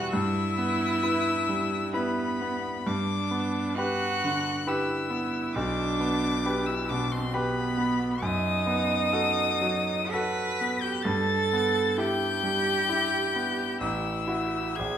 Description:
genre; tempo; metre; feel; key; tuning
classical, slow romantic movement for piano trio; 57-69 BPM; 3/4; rubato; E minor; A4 = 440 Hz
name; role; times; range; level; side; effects
rich violin; melody; 0.0-15.0 s; B5 to B6; -30 LUFS; left 7 dB; none
rich cello; second line; 0.0-15.0 s; B3 to B4; -30 LUFS; right 4 dB; none
clear concert grand piano; accompaniment; 0.0-15.0 s; A1 to B4; -28 LUFS; equal; none
room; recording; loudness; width
wet recital hall reverb, RT60 1.6 s; none; -24 LUFS; side -9 dB against mid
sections
0.0-15.0 A section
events
none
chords
0.1 Em/G; 2.9 G; 5.6 G/B; 8.2 B7/F#; 11.1 Em/G; 13.8 F#m7/A

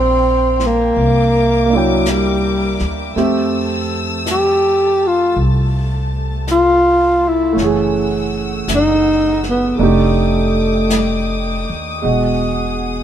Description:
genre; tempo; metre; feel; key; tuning
jazz ballad; 54 BPM; 4/4; swing 69% on 8ths; unclear; A4 = 440 Hz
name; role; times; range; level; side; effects
breathy tenor saxophone; melody; 0.0-11.7 s; F#3 to G4; -14 LUFS; equal; none
warm grand piano; accompaniment; 0.0-13.0 s; B2 to G5; -20 LUFS; right 4 dB; none
warm studio string section; sustained chords; 0.0-13.0 s; A3 to E6; -25 LUFS; left 2 dB; none
upright bass; bass; 0.0-13.0 s; E1 to F2; -20 LUFS; equal; none
jazz brush drum kit; drums; 0.6-13.0 s; brushed snare drum, hi-hat, snare drum; -27 LUFS; equal; none
room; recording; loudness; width
light reverb; minimal, uncompressed stereo recording; -13 LUFS; side -10 dB against mid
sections
0.0-13.0 A section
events
none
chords
0.0 Gm7; 1.0 C9; 3.2 Fmaj7; 7.6 F#m7; 9.8 F13; 12.0 Emaj9

